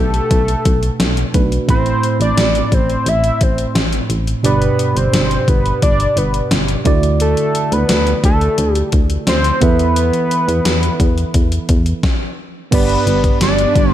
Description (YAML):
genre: 1980s-style pop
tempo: 87 BPM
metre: 4/4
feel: straight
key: unclear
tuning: A4 = 440 Hz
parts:
  - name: fat analog lead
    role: melody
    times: 0.0-13.9 s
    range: A4 to E5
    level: -18 LUFS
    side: left 1 dB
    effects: chorus, digital delay
  - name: tine electric piano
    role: accompaniment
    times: 0.0-13.9 s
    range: G2 to B5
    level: -19 LUFS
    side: right 4 dB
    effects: none
  - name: solid FM bass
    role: bass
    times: 0.0-13.9 s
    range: G1 to E2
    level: -18 LUFS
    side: equal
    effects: none
  - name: gated 80s digital drum machine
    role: drums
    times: 0.1-13.9 s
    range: crash cymbal, hi-hat, kick drum, snare drum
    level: -17 LUFS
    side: left 1 dB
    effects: gated reverb, gated reverb snare, overdrive
  - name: ethereal airy pad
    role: sustained chords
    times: 13.3-13.9 s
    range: G3 to D4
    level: -21 LUFS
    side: right 3 dB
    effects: ensemble chorus, built-in reverb
room: light reverb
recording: none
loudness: -12 LUFS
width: side -12 dB against mid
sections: 0.0-12.7 A section; 12.7-13.9 B section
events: stop 12.0-12.7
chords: 0.0 Bm7; 1.7 Amadd9; 4.4 G; 6.9 Dadd9; 9.6 Esus4; 12.7 G